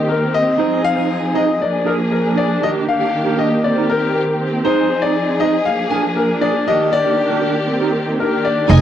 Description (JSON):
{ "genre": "disco", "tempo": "118 BPM", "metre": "4/4", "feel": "straight", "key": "F dorian", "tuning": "A4 = 438 Hz", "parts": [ { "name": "clear concert grand piano", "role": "melody", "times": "0.0-8.8 s", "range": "Bb4 to Ab5", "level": "-18 LUFS", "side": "left 5 dB", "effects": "cassette tape" }, { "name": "dark studio string section", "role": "sustained chords", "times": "0.0-8.8 s", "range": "Eb3 to Ab4", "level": "-18 LUFS", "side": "right 1 dB", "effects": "cassette tape" }, { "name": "mellow electric guitar", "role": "accompaniment", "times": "0.1-8.8 s", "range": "D4 to C5", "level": "-22 LUFS", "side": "right 9 dB", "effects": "cassette tape" }, { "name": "rich studio string section", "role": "second line", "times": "8.7-8.8 s", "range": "Ab4 to Ab5", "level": "-22 LUFS", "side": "left 2 dB", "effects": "cassette tape" }, { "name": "upright bass", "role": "bass", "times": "8.7-8.8 s", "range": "F1", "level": "-7 LUFS", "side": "right 1 dB", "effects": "none" } ], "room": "moderate spring reverb, RT60 1.3 s, studio reverb", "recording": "home recording on cassette", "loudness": "-14 LUFS", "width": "side -10 dB against mid", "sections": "0.0-8.7 A section", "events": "none", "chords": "0.0 Cm7; 0.6 Fm7; 1.6 Bb7; 2.6 Ebmaj7; 3.6 Cm7; 4.6 Fm7; 5.7 Bb7; 6.7 Ebmaj7; 7.7 Cm7; 8.2 Ebmaj7" }